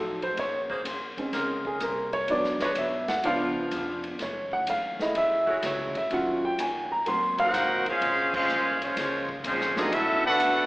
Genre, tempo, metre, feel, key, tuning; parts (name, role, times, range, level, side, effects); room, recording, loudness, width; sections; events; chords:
jazz, big band swing; 126 BPM; 4/4; swing 68% on 8ths; A4 = 440 Hz
vintage hollow-body jazz guitar; accompaniment; 0.0-10.7 s; Gb2 to C5; -38 LUFS; left 1 dB
warm upright piano; accompaniment; 0.0-9.9 s; F3 to C6; -27 LUFS; equal
mellow saxophone section; sustained chords; 0.0-8.0 s; F3 to C5; -35 LUFS; equal
upright bass; bass; 0.0-10.7 s; F1 to Bb2; -45 LUFS; equal
swinging big-band drum kit; drums; 0.2-10.5 s; crash cymbal, hi-hat, kick drum, ride cymbal, snare drum; -36 LUFS; equal
warm trumpet section; melody; 7.4-10.7 s; Ab3 to Gb5; -24 LUFS; equal
mellow trombone section; second line; 7.4-10.7 s; F3 to Gb4; -32 LUFS; right 1 dB
wet recital hall reverb, RT60 1.7 s; recorded in a church or concert hall, AM radio sound; -24 LUFS; side -20 dB against mid
0.0-8.0 A section; 8.0-10.7 B section
upright piano solo 0.0-8.0; band accent 8.3
0.4 Bbm9; 2.3 Abm7b5; 3.2 Db7b9; 4.2 Gbm7; 6.1 Ebm7; 7.1 Ab13; 8.0 Bbm9; 9.9 Bm7